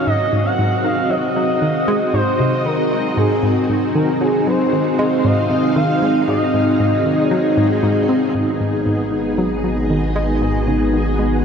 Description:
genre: ambient, sequencer-driven space music.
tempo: 116 BPM.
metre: 4/4.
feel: straight.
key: G# minor from 8.3 s.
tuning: A4 = 439 Hz.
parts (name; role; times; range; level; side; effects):
expressive portamento lead; melody; 0.0-7.8 s; Ab4 to Gb5; -22 LUFS; equal; wide subtle chorus, tape echo.
string machine, full ensemble; sustained chords; 0.0-11.4 s; B3 to F5; -18 LUFS; equal; ensemble chorus.
analog pluck; riff; 0.1-11.3 s; Ab2 to C4; -21 LUFS; equal; chorus, tape echo.
round analog bass; bass; 8.3-11.4 s; G#1; -23 LUFS; equal; none.
room: wet huge ambient reverb, RT60 8.3 s.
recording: dreamy mix soaked in reverb.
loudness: -15 LUFS.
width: side -6 dB against mid.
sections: 0.0-8.3 A section; 8.3-11.4 B section.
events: none.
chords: 0.1 Ab7; 8.3 G#m7.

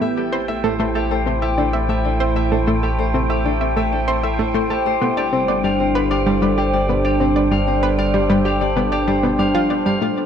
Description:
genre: ambient, sequencer-driven space music.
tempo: 96 BPM.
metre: 4/4.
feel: straight.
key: unclear.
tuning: A4 = 442 Hz.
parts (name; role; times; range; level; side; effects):
sweeping resonant pad; sustained chords; 0.0-10.3 s; G3 to B5; -21 LUFS; equal; chorus, phaser.
concert harp; arpeggios; 0.0-10.3 s; G4 to F5; -24 LUFS; left 4 dB; auto-pan, ping-pong delay.
analog pluck; riff; 0.0-10.1 s; G3 to E5; -21 LUFS; left 1 dB; chorus, ping-pong delay.
round analog bass; bass; 0.0-10.3 s; G1 to A1; -24 LUFS; right 1 dB; none.
wind-like tuned noise texture; texture; 0.0-10.3 s; G5 to E6; -30 LUFS; right 4 dB; built-in reverb.
room: moderate echo chamber reverb, RT60 2.4 s.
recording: echo-heavy mix, cassette tape.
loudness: -16 LUFS.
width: side -8 dB against mid.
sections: 0.0-10.0 A section.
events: none.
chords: 0.0 Am7; 5.0 G7sus4.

